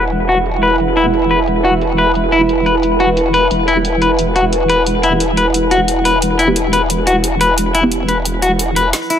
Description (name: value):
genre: dark technical drum and bass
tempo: 177 BPM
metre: 4/4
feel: straight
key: E minor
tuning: A4 = 438 Hz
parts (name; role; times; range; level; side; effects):
- deep dark ambient pad; sustained chords; 0.0-9.2 s; E4 to B5; -17 LUFS; right 2 dB; chorus, built-in reverb
- semi-hollow electric guitar; arpeggios; 0.0-9.2 s; E4 to B4; -15 LUFS; left 2 dB; vintage 12-bit sampler grit, low-pass filter, digital delay
- filtered dub chord stab; stabs; 0.0-8.7 s; B3 to G4; -22 LUFS; right 2 dB; phaser, analog chorus, cassette tape, digital delay
- growl bass; bass; 0.0-8.9 s; E1; -18 LUFS; equal; chorus, overdrive
- downlifter and riser; sound effects; 0.0-0.8, 9.0-9.2 s; none; -40 LUFS; equal; none
- drum and bass drum kit; drums; 0.1-9.2 s; hi-hat, snare drum; -21 LUFS; equal; overdrive, high-pass filter on hats, low-pass filter on hats, small room ambience, high-pass filter on snare, low-pass filter on snare, high-pass filter on toms, low-pass filter on toms, high-pass filter on cymbals, low-pass filter on cymbals
- hi-hat; drums; 8.9-9.2 s; none; -30 LUFS; equal; none
room: moderate lush hall reverb, RT60 2.1 s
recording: none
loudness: -11 LUFS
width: side -9 dB against mid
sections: 0.0-8.9 A section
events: filter sweep on synth stab 0.0-8.9; drum fill 8.9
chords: 0.0 Em